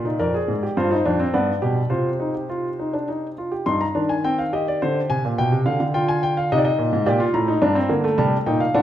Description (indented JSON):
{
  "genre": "classical, baroque-style 3-part fugue for grand piano",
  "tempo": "106 BPM",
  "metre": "3/4",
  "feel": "straight",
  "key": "C minor",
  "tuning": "A4 = 441 Hz",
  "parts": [
    { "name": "warm grand piano", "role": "solo", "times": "0.0-8.8 s", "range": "F2 to C6", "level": "-19 LUFS", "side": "equal", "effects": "none" }
  ],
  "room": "wet recital hall reverb, RT60 1.7 s",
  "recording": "none",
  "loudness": "-19 LUFS",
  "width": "side -11 dB against mid",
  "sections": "0.2-3.7 A section; 3.7-8.8 B section",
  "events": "none",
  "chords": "0.2 Ddim/F; 0.8 Cm/G; 1.3 G; 1.9 Cm; 3.7 Cm/G; 4.8 Bb13; 5.4 G7(no3); 6.5 Cm; 7.1 Gm; 8.2 Am7b5/C"
}